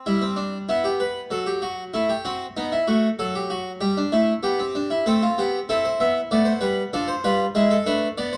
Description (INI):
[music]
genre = classical, baroque-style 4-part fugue for harpsichord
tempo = 96 BPM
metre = 4/4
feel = straight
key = unclear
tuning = A4 = 440 Hz
[part]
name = harpsichord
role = solo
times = 0.0-8.4 s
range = F3 to E5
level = -23 LUFS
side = equal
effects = none
[sound]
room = moderate stone room reverb, RT60 1.0 s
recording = dark, warm production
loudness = -23 LUFS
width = mono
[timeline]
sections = 0.0-8.4 A section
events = none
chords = 0.1 Em/G; 1.3 F#m7b5; 2.6 B7; 3.8 Em/G; 5.1 Am; 6.3 Bm7b5; 7.6 E7/G#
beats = | 0.06 0.69 1.31 1.94 | 2.56 3.19 3.82 4.44 | 5.06 5.69 6.31 6.94 | 7.56 8.19